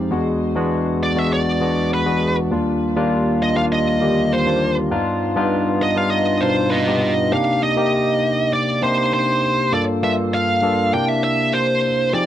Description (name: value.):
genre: pop.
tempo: 100 BPM.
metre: 4/4.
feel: straight.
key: unclear.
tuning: A4 = 440 Hz.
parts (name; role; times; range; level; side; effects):
barky tine electric piano; accompaniment; 0.0-12.3 s; Eb2 to A4; -18 LUFS; left 1 dB; overdrive, analog chorus.
high-gain lead guitar; melody; 1.0-12.3 s; B4 to G5; -20 LUFS; right 1 dB; distortion.
room: light reverb.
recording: dry, close 1970s-style studio recording.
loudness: -16 LUFS.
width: side -11 dB against mid.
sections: 0.0-7.3 A section; 7.3-12.3 B section.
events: none.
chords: 0.1 E9; 2.5 Ebmaj9; 4.9 G7b13; 7.3 Cm9; 9.7 Gm7; 10.9 C7.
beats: | 0.11 0.71 1.31 1.91 | 2.51 3.11 3.71 4.31 | 4.91 5.51 6.11 6.71 | 7.32 7.92 8.52 9.12 | 9.72 10.32 10.92 11.52 | 12.12.